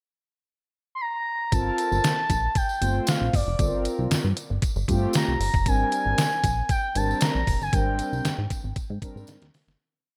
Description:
early-eighties boogie funk; 116 BPM; 4/4; straight; A4 = 440 Hz
expressive portamento lead; melody; 0.9-8.8 s; D5 to C6; -30 LUFS; equal; chorus, delay
mellow synth brass; accompaniment; 1.5-9.5 s; G3 to C5; -33 LUFS; equal; chorus
plucky analog bass; bass; 1.5-9.8 s; F1 to Ab2; -29 LUFS; equal
detuned 8-bit digital drum machine; drums; 1.5-9.8 s; hi-hat, kick drum, snare drum; -28 LUFS; equal
tambourine; percussion; 1.5-9.8 s; -42 LUFS; equal
moderate plate reverb, RT60 1.6 s; bright 1980s-style digital production; -25 LUFS; mono
0.0-1.5 pickup bar; 1.5-9.8 verse
fade-out 7.7-9.8; drum fill 9.3-9.8
0.0 N.C.; 1.5 Gm11; 5.7 Abmaj9#11
0.49 1.00 | 1.52 2.04 2.56 3.07 | 3.59 4.11 4.63 5.14 | 5.66 6.18 6.70 7.21 | 7.73 8.25 8.76 9.28

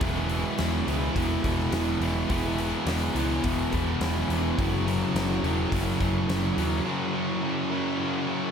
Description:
rock, shoegaze and dream pop; 105 BPM; 4/4; straight; E lydian; A4 = 440 Hz
overdriven electric guitar; riff; 0.0-8.5 s; E3 to A#4; -30 LUFS; right 5 dB; reverse reverb
thick fuzz guitar; riff; 0.0-8.5 s; E2 to F#3; -30 LUFS; left 5 dB; distortion, analog chorus
tight distorted guitar; riff; 0.0-8.5 s; E2 to F#3; -32 LUFS; right 1 dB; distortion
overdriven picked electric bass; bass; 0.0-6.8 s; E1 to D#2; -30 LUFS; equal
huge arena drum kit; drums; 0.0-6.7 s; hi-hat, kick drum, snare drum; -32 LUFS; left 1 dB
wet cathedral reverb, RT60 5.4 s; dreamy mix soaked in reverb; -24 LUFS; side -7 dB against mid
0.0-8.5 A section
break 6.9-8.5
0.0 E; 4.6 F#5
| 0.01 0.58 1.16 1.73 | 2.30 2.87 3.44 4.01 | 4.58 5.15 5.72 6.29 | 6.86 7.43 8.00

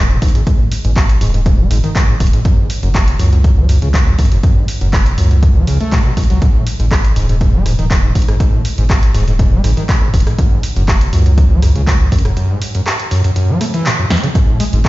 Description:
acid house; 121 BPM; 4/4; straight; A4 = 440 Hz
overdriven acid bass; riff; 0.0-14.8 s; E2 to A3; -17 LUFS; equal; distortion, lush chorus, sidechain pumping, analog delay
round analog bass; bass; 0.0-14.9 s; D#1 to G#2; -14 LUFS; equal; sidechain pumping
electronic kick drum; drums; 0.2-14.9 s; -12 LUFS; equal
punchy analog drum machine; drums; 0.2-14.9 s; handclaps, hi-hat, rim click, snare drum; -21 LUFS; equal
little or no reverb; played on a big sound system in a bare room, stone room reverb, nothing above 7.6 kHz; -10 LUFS; side -18 dB against mid
0.0-14.9 A section
break 12.4-14.4; drum fill 14.1
0.0 G#5; 2.5 F#5; 6.4 G#5; 10.4 F#5; 14.4 G#5
| 0.47 0.96 1.46 1.96 | 2.45 2.95 3.44 3.94 | 4.43 4.93 5.43 5.92 | 6.42 6.91 7.41 7.91 | 8.40 8.90 9.39 9.89 | 10.38 10.88 11.38 11.87 | 12.37 12.86 13.36 13.86 | 14.35 14.85

